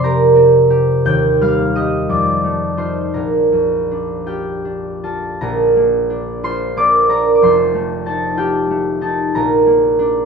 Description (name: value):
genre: classical, solo harp piece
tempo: 51-64 BPM (dotted quarters)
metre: 6/8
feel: rubato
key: Bb major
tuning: A4 = 440 Hz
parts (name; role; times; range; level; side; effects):
- concert harp; solo; 0.0-10.3 s; F1 to G6; -13 LUFS; right 1 dB; none
room: moderate large studio reverb, RT60 1.2 s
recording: minimal, uncompressed stereo recording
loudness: -13 LUFS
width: side -5 dB against mid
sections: 0.0-5.4 A section; 5.4-10.3 B section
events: none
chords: 0.0 C7/F; 1.1 Eb; 2.1 F7; 3.1 Bb; 7.4 F7; 9.3 Bb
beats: 0.03 | 1.07 2.08 | 3.14 4.27 | 5.41 6.44 | 7.42 8.38 | 9.34